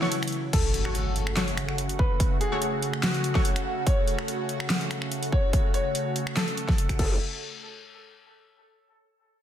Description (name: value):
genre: heavy wobble dubstep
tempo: 144 BPM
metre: 4/4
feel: half-time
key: F# minor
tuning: A4 = 439 Hz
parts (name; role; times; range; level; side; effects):
- clear baby grand piano; melody; 0.0-7.1 s; E3 to C#5; -33 LUFS; left 2 dB; vintage 12-bit sampler grit, dub echo
- lush unison pad; sustained chords; 0.0-7.2 s; C#3 to F#4; -31 LUFS; right 1 dB; chorus, phaser, sidechain pumping
- orchestra-hit-like synth stab; stabs; 0.0-4.1 s; A3 to C#5; -33 LUFS; left 1 dB; built-in reverb, dub echo
- big-room dance drum kit; drums; 0.0-7.1 s; crash cymbal, finger snaps, handclaps, hi-hat, ride cymbal, snare drum; -30 LUFS; equal; overdrive
- electronic kick drum; drums; 0.5-7.1 s; none; -24 LUFS; equal; overdrive
- impact; sound effects; 0.5-2.2 s; none; -31 LUFS; equal; none
- growl bass; bass; 7.0-7.2 s; F#1; -29 LUFS; equal; chorus, overdrive
room: light reverb, digital ambience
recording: dense, heavily limited modern master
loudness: -24 LUFS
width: side -10 dB against mid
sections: 0.5-7.2 A section; 7.2-8.9 B section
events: break 0.0-0.5; impact 0.5-2.2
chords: 0.0 F#m; 7.2 N.C.